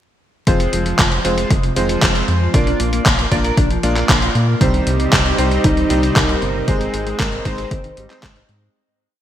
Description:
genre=italo disco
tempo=116 BPM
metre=4/4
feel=straight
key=F dorian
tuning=A4 = 439 Hz
part: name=mellow electric guitar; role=arpeggios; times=0.5-8.7 s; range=F2 to Bb4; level=-24 LUFS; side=left 1 dB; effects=ping-pong delay
part: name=bright electric grand piano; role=stabs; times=0.5-8.2 s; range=G3 to D5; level=-22 LUFS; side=right 1 dB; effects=lush chorus, ping-pong delay
part: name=round analog bass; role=bass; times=0.5-8.7 s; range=F1 to Bb2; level=-20 LUFS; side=equal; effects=none
part: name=dusty soul sampler-style drum kit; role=drums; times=0.5-8.6 s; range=handclaps, hi-hat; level=-20 LUFS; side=equal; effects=gated reverb
part: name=electronic kick drum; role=drums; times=0.5-8.3 s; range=none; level=-17 LUFS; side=equal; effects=overdrive
part: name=lush unison pad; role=sustained chords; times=4.6-8.7 s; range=G3 to Eb4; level=-24 LUFS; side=right 2 dB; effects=chorus
part: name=soft octave-layered synth lead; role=melody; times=5.4-8.2 s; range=Eb4 to C5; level=-23 LUFS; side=equal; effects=chorus
room=moderate lush hall reverb, RT60 2.4 s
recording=bright 1980s-style digital production, vinyl crackle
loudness=-14 LUFS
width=side -11 dB against mid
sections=0.5-8.7 verse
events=fade-out 6.0-8.7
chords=0.5 Fm; 2.5 Bb; 4.6 Cm; 6.7 Ab

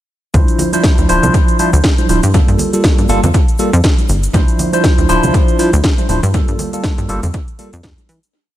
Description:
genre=filtered disco house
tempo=120 BPM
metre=4/4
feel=swing 56% on 16ths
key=D minor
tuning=A4 = 440 Hz
part: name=bright tine electric piano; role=accompaniment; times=0.3-7.7 s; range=F3 to C5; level=-16 LUFS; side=equal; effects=phaser, sidechain pumping
part: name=plucky analog bass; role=bass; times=0.3-8.2 s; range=D1 to E3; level=-14 LUFS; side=equal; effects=sidechain pumping
part: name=electronic kick drum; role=drums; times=0.3-8.0 s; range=none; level=-13 LUFS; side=equal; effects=none
part: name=house drum kit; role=drums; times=0.3-8.3 s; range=hi-hat, shaker, snare drum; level=-20 LUFS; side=equal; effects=overdrive, sidechain pumping on hats, sidechain pumping on perc, tape echo
part: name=congas and tube shaker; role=percussion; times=0.3-8.3 s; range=none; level=-24 LUFS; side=right 2 dB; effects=none
room=light reverb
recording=echo-heavy mix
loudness=-10 LUFS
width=side -13 dB against mid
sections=0.3-8.3 drop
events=drop 0.3-8.3; fade-out 5.7-8.3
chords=0.3 Dm9; 2.3 Gm9; 4.3 Dm9; 6.3 Gm9

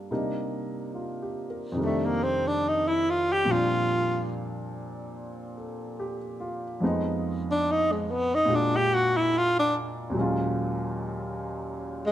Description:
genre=jazz ballad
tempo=72 BPM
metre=4/4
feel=swing 66% on 8ths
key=Bb major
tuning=A4 = 442 Hz
part: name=warm baby grand piano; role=accompaniment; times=0.0-12.1 s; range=Eb2 to Bb4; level=-29 LUFS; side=equal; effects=none
part: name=breathy tenor saxophone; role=melody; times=1.9-12.1 s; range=Ab3 to G4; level=-23 LUFS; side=equal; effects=none
room=moderate large studio reverb, RT60 1.3 s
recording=none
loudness=-24 LUFS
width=side -12 dB against mid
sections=0.0-12.1 A section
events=tenor saxophone solo 0.0-12.1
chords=0.1 Cm9; 1.8 F13; 3.5 Bb69; 6.8 Fm7b5; 8.5 Bb7b13; 10.2 Ebm11

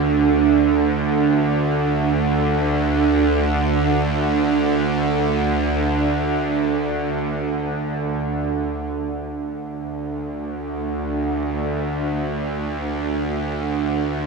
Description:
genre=dark ambient drone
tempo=free time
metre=none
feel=none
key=unclear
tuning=A4 = 440 Hz
part: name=bowed-like drone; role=drone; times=0.0-14.3 s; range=D2 to D3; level=-18 LUFS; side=right 3 dB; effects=built-in reverb
part: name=bronze singing bowl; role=texture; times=9.0-14.3 s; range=none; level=barely audible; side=none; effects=none
room=wet cathedral reverb, RT60 6.1 s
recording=small room ambience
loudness=-19 LUFS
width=side -3 dB against mid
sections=0.0-8.9 A section; 8.9-14.3 B section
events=none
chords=0.0 N.C.; 8.9 D5

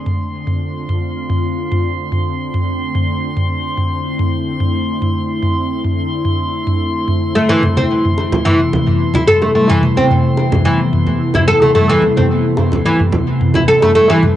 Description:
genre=organic downtempo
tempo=109 BPM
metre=4/4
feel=straight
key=A minor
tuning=A4 = 440 Hz
part: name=ethereal airy pad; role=sustained chords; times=0.0-14.4 s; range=C3 to F4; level=-18 LUFS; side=left 1 dB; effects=ensemble chorus, built-in reverb, cassette tape
part: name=drifting glass-harmonics texture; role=texture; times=0.0-14.4 s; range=C6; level=-26 LUFS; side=equal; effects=chorus, built-in reverb, cassette tape
part: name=electronic toms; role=drums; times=0.1-14.3 s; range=none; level=-19 LUFS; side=equal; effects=overdrive, cassette tape
part: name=oud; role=arpeggios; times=7.4-14.2 s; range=E3 to A4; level=-13 LUFS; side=equal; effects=cassette tape, tape echo
part: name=congas and bongos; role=percussion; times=7.6-14.3 s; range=none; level=-20 LUFS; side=right 1 dB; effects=none
room=moderate studio reverb, RT60 0.5 s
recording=home recording on cassette, nothing above 10.5 kHz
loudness=-13 LUFS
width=side -12 dB against mid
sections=0.0-14.4 A section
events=none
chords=0.0 F6; 2.9 D5; 7.3 Amadd9

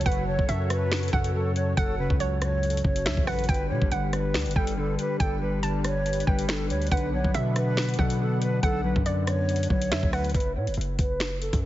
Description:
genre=hip hop, drill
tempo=140 BPM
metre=4/4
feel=half-time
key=unclear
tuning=A4 = 440 Hz
part: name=breathy mellow silver concert flute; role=melody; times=0.0-11.7 s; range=A4 to C#5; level=-32 LUFS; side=right 1 dB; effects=low-pass filter, tape echo
part: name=hollow square pluck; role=second line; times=0.0-10.3 s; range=C#5 to A5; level=-34 LUFS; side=right 3 dB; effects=chorus, tape echo
part: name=mellow electric guitar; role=accompaniment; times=0.0-10.3 s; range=F#2 to G3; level=-30 LUFS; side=left 2 dB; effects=lush chorus, low-pass filter
part: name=warm analog pad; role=sustained chords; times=0.0-10.3 s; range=F#3 to F#5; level=-36 LUFS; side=equal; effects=chorus
part: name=hard-hitting 808-style bass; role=bass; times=0.0-11.7 s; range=F#1 to B2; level=-28 LUFS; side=equal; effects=none
part: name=drill drum kit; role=drums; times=0.0-11.6 s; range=finger snaps, hi-hat, kick drum, rim click, snare drum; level=-28 LUFS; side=equal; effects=none
room=little or no reverb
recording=heavily compressed radio sound, nothing above 7.7 kHz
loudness=-23 LUFS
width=side -14 dB against mid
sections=0.0-10.3 A section; 10.3-11.7 B section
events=none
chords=0.0 F#m; 3.5 G; 6.9 Bm; 10.3 N.C.

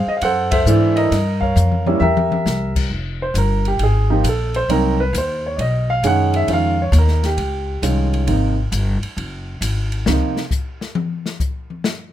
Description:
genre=jazz piano trio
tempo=134 BPM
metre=4/4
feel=swing 68% on 8ths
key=F minor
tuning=A4 = 440 Hz
part: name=warm concert grand piano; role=melody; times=0.0-10.4 s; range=C3 to F#5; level=-19 LUFS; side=right 2 dB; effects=none
part: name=upright bass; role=bass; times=0.0-10.2 s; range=F1 to Ab2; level=-18 LUFS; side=left 1 dB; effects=none
part: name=open jazz drum kit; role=drums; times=0.2-12.0 s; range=crash cymbal, hi-hat, kick drum, ride cymbal, snare drum, toms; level=-25 LUFS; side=left 3 dB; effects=none
room=light reverb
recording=minimal, uncompressed stereo recording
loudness=-16 LUFS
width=side -12 dB against mid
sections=0.0-2.9 A section; 2.9-12.1 B section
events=band accent 0.4; drum fill 1.6-2.5; grand piano solo 2.9-12.1; drum solo 10.1-12.1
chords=0.2 D7; 1.1 Gm7b5; 2.0 C7; 2.9 Fmadd9; 4.7 Cm7b5; 5.6 Badd9; 6.5 Dbmaj9#11; 8.3 Ab7(no3); 10.1 N.C.

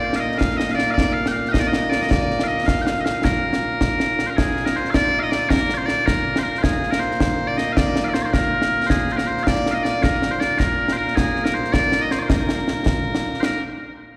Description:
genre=scottish traditional, Scottish pipe music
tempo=106 BPM (dotted quarters)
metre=6/8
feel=straight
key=Bb mixolydian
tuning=A4 = 440 Hz
part: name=loud bright bagpipes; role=melody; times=0.0-13.6 s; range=Bb2 to G5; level=-23 LUFS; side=equal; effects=slapback echo, tape echo
part: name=concert snare drum and concert bass drum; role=drums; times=0.1-13.5 s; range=none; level=-24 LUFS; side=equal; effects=slapback echo
room=moderate digital room reverb, RT60 1.1 s, small room ambience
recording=live gig heard through the venue's PA, recital hall reverb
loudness=-20 LUFS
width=mono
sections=0.0-4.4 A section; 4.4-13.4 B section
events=none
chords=none

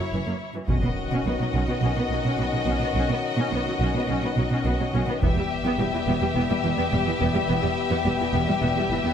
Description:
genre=cinematic, epic orchestral film score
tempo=106 BPM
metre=4/4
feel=straight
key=B major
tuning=A4 = 439 Hz
part: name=clear symphonic violin section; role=melody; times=0.0-9.1 s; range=C#5 to E5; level=-31 LUFS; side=left 5 dB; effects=none
part: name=warm symphonic violin section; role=second line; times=0.0-9.1 s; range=E4 to G4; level=-30 LUFS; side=left 5 dB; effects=none
part: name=warm symphonic viola section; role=accompaniment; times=0.0-9.1 s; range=E3 to C#4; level=-30 LUFS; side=right 1 dB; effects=none
part: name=rich symphonic cello section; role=bass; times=0.0-9.1 s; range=E2 to B2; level=-28 LUFS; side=right 2 dB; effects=none
part: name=rich symphonic double bass section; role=bass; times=0.1-9.0 s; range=E1 to B1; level=-28 LUFS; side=right 2 dB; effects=none
part: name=mellow French horn section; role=sustained chords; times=0.7-9.1 s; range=D#3 to C#4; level=-31 LUFS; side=left 4 dB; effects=none
part: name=taiko ensemble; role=drums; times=0.7-1.8, 5.2-6.3 s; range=none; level=-27 LUFS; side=equal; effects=none
part: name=impact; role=sound effects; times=0.7-3.0 s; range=none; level=-36 LUFS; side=equal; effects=none
room=light reverb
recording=none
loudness=-22 LUFS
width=side -8 dB against mid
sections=0.7-9.1 A section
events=impact 0.7-3.0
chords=0.0 F#7(no3); 0.7 Badd9; 5.2 Em

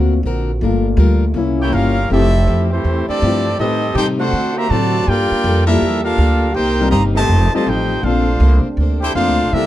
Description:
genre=jazz, big band swing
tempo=162 BPM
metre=4/4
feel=swing 64% on 8ths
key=F major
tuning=A4 = 440 Hz
part: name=dark grand piano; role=accompaniment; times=0.0-9.7 s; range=F#3 to B4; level=-20 LUFS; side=left 4 dB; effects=none
part: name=picked plugged-in steel-string acoustic guitar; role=accompaniment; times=0.0-9.7 s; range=A2 to C5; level=-25 LUFS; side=left 3 dB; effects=none
part: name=muted trombone section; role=sustained chords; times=0.0-9.7 s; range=Bb2 to G4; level=-25 LUFS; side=right 1 dB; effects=none
part: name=upright bass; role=bass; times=0.0-9.7 s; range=F1 to D3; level=-16 LUFS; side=right 1 dB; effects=none
part: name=clear trumpet section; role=melody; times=1.6-9.7 s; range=A3 to Bb5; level=-19 LUFS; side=equal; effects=none
part: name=clear trombone section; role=second line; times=1.6-9.7 s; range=C3 to G4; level=-22 LUFS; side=equal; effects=none
room=light reverb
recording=dark, warm production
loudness=-13 LUFS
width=side -13 dB against mid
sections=0.0-2.1 A section; 2.1-9.7 B section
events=grand piano solo 0.0-2.1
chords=0.0 D7b13; 0.6 Gm7; 1.4 C7b9; 2.1 Fmaj9; 3.6 Am7b5; 4.3 D7; 5.1 Gm9; 6.6 Cm7; 7.3 F9; 8.0 Bbmaj9

